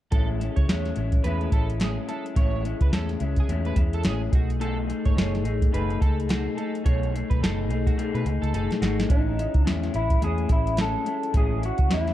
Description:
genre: indie pop, bedroom pop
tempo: 107 BPM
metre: 4/4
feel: swing 60% on 16ths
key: A lydian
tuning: A4 = 440 Hz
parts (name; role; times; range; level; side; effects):
- electric guitar at the edge of break-up; second line; 0.1-9.0 s; F#4 to C#5; -36 LUFS; right 6 dB; analog chorus, tape echo
- electric guitar through a small old amp; accompaniment; 0.1-12.1 s; A2 to G#4; -29 LUFS; left 5 dB; wide subtle chorus, warbly pitch drift
- vintage muted fingered electric bass; bass; 0.1-12.1 s; F#1 to B2; -27 LUFS; equal; none
- soft vintage rhythm box; drums; 0.1-12.1 s; hi-hat, kick drum, snare drum; -23 LUFS; equal; overdrive
- electric guitar through a small old amp; melody; 9.1-12.1 s; D#4 to A4; -28 LUFS; equal; analog chorus
room: little or no reverb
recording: dark, warm production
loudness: -22 LUFS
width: side -13 dB against mid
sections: 0.1-9.1 A section; 9.1-12.1 B section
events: drum fill 8.0-9.1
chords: 0.1 Amaj7; 4.3 B13; 9.1 Amaj7

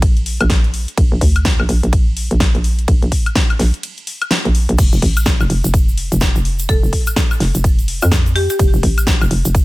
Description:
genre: bass house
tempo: 126 BPM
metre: 4/4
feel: swing 61% on 16ths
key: unclear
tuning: A4 = 440 Hz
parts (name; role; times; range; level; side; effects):
- hollow knocking FM bass; bass; 0.0-9.6 s; F1 to F2; -16 LUFS; equal; overdrive, sidechain pumping
- big-room dance drum kit; drums; 0.0-9.6 s; crash cymbal, hi-hat, ride cymbal, snare drum, woodblock; -21 LUFS; left 1 dB; none
- electronic kick drum; drums; 0.0-9.6 s; none; -14 LUFS; equal; none
- egg shaker; percussion; 4.8-9.6 s; none; -28 LUFS; right 2 dB; none
- marimba with hard mallets; melody; 6.7-8.6 s; G4 to A4; -22 LUFS; left 1 dB; dub echo
room: digital ambience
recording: none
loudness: -13 LUFS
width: side -20 dB against mid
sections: 0.0-9.6 A section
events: break 3.8-4.8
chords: 0.0 N.C.; 4.8 F

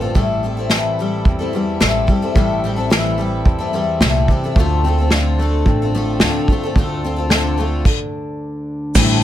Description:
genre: indie folk with a building arrangement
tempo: 109 BPM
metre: 4/4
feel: straight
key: D minor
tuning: A4 = 440 Hz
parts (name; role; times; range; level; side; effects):
- fingerpicked steel-string acoustic guitar; accompaniment; 0.0-9.2 s; D2 to E4; -23 LUFS; left 1 dB; none
- picked twelve-string acoustic guitar; accompaniment; 0.0-9.2 s; A2 to A4; -21 LUFS; left 3 dB; plate reverb
- upright bass; bass; 0.0-9.2 s; A1 to E2; -20 LUFS; right 1 dB; none
- unplugged drum kit; drums; 0.2-9.1 s; crash cymbal, kick drum, snare drum; -17 LUFS; equal; none
- egg shaker; percussion; 9.0-9.1 s; none; -25 LUFS; right 17 dB; none
room: light reverb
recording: none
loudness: -14 LUFS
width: side -12 dB against mid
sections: 0.0-9.0 A section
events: stop 7.9-9.0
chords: 0.2 Am7; 4.6 Dm7

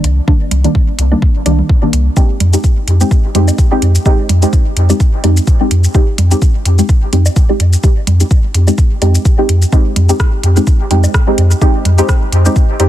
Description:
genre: dub techno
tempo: 127 BPM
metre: 4/4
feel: swing 55% on 16ths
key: unclear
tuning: A4 = 441 Hz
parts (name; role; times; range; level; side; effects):
- deep mellow chord stab; stabs; 0.0-12.9 s; Eb3 to G4; -16 LUFS; equal; chorus, phaser, cassette tape, sidechain pumping, dub echo
- warm sub bass; bass; 0.0-12.9 s; C2 to F2; -10 LUFS; equal; sidechain pumping
- deep house drum kit; drums; 0.0-12.9 s; hi-hat, rim click, shaker; -22 LUFS; equal; soft clipping on snare, dub echo
- electronic kick drum; drums; 0.3-12.7 s; none; -10 LUFS; equal; none
- congas and woodblock; percussion; 0.5-12.9 s; none; -26 LUFS; right 4 dB; sidechain pumping on perc, dub echo
room: digital ambience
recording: dense, heavily limited modern master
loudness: -9 LUFS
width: side -13 dB against mid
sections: 0.0-12.9 A section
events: none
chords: 0.0 Cm7; 2.2 Fm7

